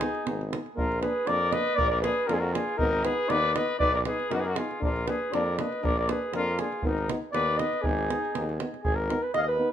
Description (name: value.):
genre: balkan folk, Balkan brass band.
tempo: 119 BPM.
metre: 2/4.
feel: swing 55% on 16ths.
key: Ab dorian sharp4.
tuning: A4 = 440 Hz.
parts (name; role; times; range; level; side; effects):
mellow flugelhorn; melody; 0.0-9.7 s; Ab4 to F5; -28 LUFS; equal; tape echo.
warm trumpet; second line; 0.0-8.6 s; Eb4 to B4; -33 LUFS; left 5 dB; none.
clear French horn; accompaniment; 0.0-9.7 s; D4 to D#4; -36 LUFS; left 5 dB; none.
mellow euphonium; accompaniment; 0.0-9.7 s; Bb3 to Cb4; -36 LUFS; right 3 dB; none.
clear tuba; bass; 0.0-9.6 s; Ab1 to F#2; -32 LUFS; equal; none.
davul; percussion; 0.0-9.5 s; none; -33 LUFS; right 2 dB; none.
room: moderate studio reverb, RT60 0.6 s.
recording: none.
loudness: -25 LUFS.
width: side -10 dB against mid.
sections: 0.8-8.8 A section.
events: none.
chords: 0.0 Abm; 0.8 Bb; 2.8 Abm; 3.8 B; 4.8 Bb; 6.8 Abm.